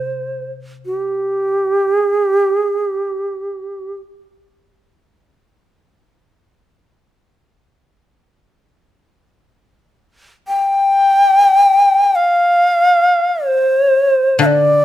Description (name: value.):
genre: japanese traditional, Japanese chamber music.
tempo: free time.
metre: none.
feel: none.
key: unclear.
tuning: A4 = 440 Hz.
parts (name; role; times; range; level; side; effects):
bright long shakuhachi; melody; 0.0-14.8 s; G4 to G5; -12 LUFS; equal; none.
koto; accompaniment; 0.0-2.3, 14.4-14.8 s; C3 to D3; -18 LUFS; left 5 dB; none.
room: light reverb.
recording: close, detailed microphones.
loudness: -12 LUFS.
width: side -13 dB against mid.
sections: 0.0-9.1 A section; 9.1-14.8 A section.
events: none.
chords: none.